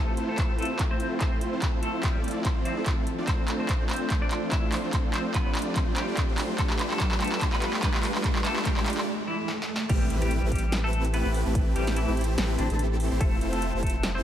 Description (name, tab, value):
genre	future bass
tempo	145 BPM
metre	4/4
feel	swing 56% on 16ths, half-time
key	A minor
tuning	A4 = 440 Hz
part	semi-hollow electric guitar	melody	0.0-14.2 s	D3 to E5	-34 LUFS	left 1 dB	tremolo, sidechain pumping, digital delay
part	shimmering ambient pad	sustained chords	0.1-14.2 s	F3 to A5	-38 LUFS	equal	chorus, built-in reverb, sidechain pumping
part	supersaw chords	riff	0.0-14.2 s	A3 to D5	-31 LUFS	equal	sidechain pumping, low-pass filter
part	riser and impact	sound effects	0.7-11.6 s	none	-36 LUFS	right 1 dB	none
part	big-room dance drum kit	drums	0.2-14.1 s	crash cymbal, handclaps, hi-hat, snare drum	-31 LUFS	equal	high-pass filter on snare, studio reverb, high-pass filter on hats, high-pass filter on cymbals
part	electronic kick drum	drums	0.4-13.9 s	none	-27 LUFS	equal	studio reverb
part	saturated sub bass	bass	9.9-14.2 s	F1 to A1	-28 LUFS	equal	sidechain pumping
room	light reverb, digital ambience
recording	none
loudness	-24 LUFS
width	side -11 dB against mid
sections	0.0-9.9 A section; 9.9-14.2 B section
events	build-up 0.0-9.9; drum fill 0.0-9.1, 9.5-9.9; riser 0.7-9.9; break 9.1-9.9; drop 9.9-14.2; impact 9.9-11.6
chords	0.0 Fmaj7; 3.1 Dm7/F; 6.6 G9; 9.9 Am9; 13.2 Fmaj7